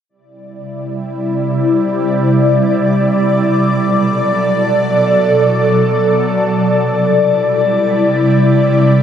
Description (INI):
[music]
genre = hip hop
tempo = free time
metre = none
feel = none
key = C lydian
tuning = A4 = 442 Hz
[part]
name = ethereal airy pad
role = solo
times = 0.7-9.0 s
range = B2 to D5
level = -11 LUFS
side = equal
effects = ensemble chorus, built-in reverb, phaser, digital delay
[sound]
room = moderate shimmer reverb, RT60 7.9 s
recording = none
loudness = -11 LUFS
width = side -9 dB against mid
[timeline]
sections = 0.1-6.6 A section; 6.6-9.0 B section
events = none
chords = 0.1 Cadd9; 3.3 Bm7; 6.6 Cadd9